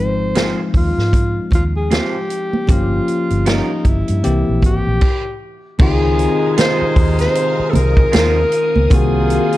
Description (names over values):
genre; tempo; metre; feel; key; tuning
lush 1970s-style soul; 77 BPM; 4/4; swing 58% on 16ths; unclear; A4 = 439 Hz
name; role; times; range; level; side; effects
breathy alto saxophone; melody; 0.0-9.6 s; Eb4 to C5; -20 LUFS; equal; slapback echo
bell-like tine electric piano; accompaniment; 0.0-9.6 s; Eb3 to G4; -21 LUFS; left 3 dB; none
vintage muted fingered electric bass; bass; 0.0-9.4 s; G1 to Ab2; -18 LUFS; equal; none
electric guitar through a small old amp; riff; 0.3-8.4 s; G3 to C5; -25 LUFS; right 4 dB; none
vintage drum kit; drums; 0.4-9.6 s; crash cymbal, hi-hat, kick drum, snare drum; -17 LUFS; equal; none
congas; percussion; 0.4-9.1 s; none; -22 LUFS; right 2 dB; none
phased string machine; sustained chords; 5.8-9.6 s; Bb3 to Eb6; -27 LUFS; left 1 dB; ensemble chorus, phaser
dark horn section; stabs; 5.8-9.6 s; C3 to F5; -23 LUFS; equal; none
room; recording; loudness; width
little or no reverb; dark, warm production; -13 LUFS; side -16 dB against mid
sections
0.0-5.8 A section; 5.8-9.6 B section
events
stop 5.0-5.8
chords
0.0 Ab6; 2.7 Gm7b5; 4.2 C7; 5.8 Dbmaj9; 8.9 Cm7b5